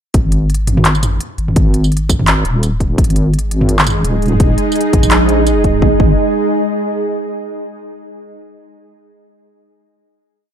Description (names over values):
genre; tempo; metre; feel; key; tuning
half-time drum and bass; 169 BPM; 4/4; swing 56% on 16ths, half-time; unclear; A4 = 440 Hz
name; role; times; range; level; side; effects
deep soft wobble bass; bass; 0.1-6.2 s; D#1 to A#1; -14 LUFS; equal; chorus
electronic kick drum; drums; 0.1-6.1 s; none; -14 LUFS; equal; none
industrial drum kit; drums; 0.1-5.7 s; handclaps, hi-hat, tambourine, toms; -16 LUFS; equal; none
bowed-like drone; sustained chords; 3.6-7.2 s; G#3 to D#5; -16 LUFS; right 2 dB; built-in reverb, sidechain pumping
room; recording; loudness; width
light reverb; none; -11 LUFS; side -9 dB against mid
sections
0.1-5.8 drop; 5.8-7.2 final chord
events
drop 0.1-5.8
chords
0.1 G#5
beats
| 0.14 0.50 0.85 1.21 | 1.56 1.92 2.27 2.63 | 2.98 3.34 3.69 4.05 | 4.40 4.76 5.11 5.47 | 5.82 6.18 6.53 6.89